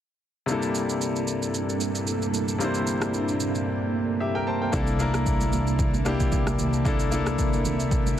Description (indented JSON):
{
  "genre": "amapiano",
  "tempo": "113 BPM",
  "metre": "4/4",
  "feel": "swing 55% on 16ths",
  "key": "unclear",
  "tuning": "A4 = 441 Hz",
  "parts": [
    { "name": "bright grand piano", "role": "accompaniment", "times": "0.5-8.2 s", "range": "C3 to A5", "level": "-27 LUFS", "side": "left 3 dB", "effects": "none" },
    { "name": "string machine, cellos", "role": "sustained chords", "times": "0.5-8.2 s", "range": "C2 to A5", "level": "-29 LUFS", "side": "right 2 dB", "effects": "phaser, ensemble chorus" },
    { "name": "deep house drum kit", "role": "drums", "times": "0.5-8.2 s", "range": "kick drum, rim click, shaker", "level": "-28 LUFS", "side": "equal", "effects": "overdrive" },
    { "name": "plucky analog bass", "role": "bass", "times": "4.7-8.2 s", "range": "C2", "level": "-27 LUFS", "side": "equal", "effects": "none" },
    { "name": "congas", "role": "percussion", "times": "5.0-8.2 s", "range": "none", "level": "-34 LUFS", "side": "right 6 dB", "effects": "none" }
  ],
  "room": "little or no reverb",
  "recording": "dense, heavily limited modern master",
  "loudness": "-23 LUFS",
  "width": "side -10 dB against mid",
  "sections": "0.5-4.7 A section; 4.7-8.2 B section",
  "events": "drums muted 3.7-4.7",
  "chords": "0.5 C13"
}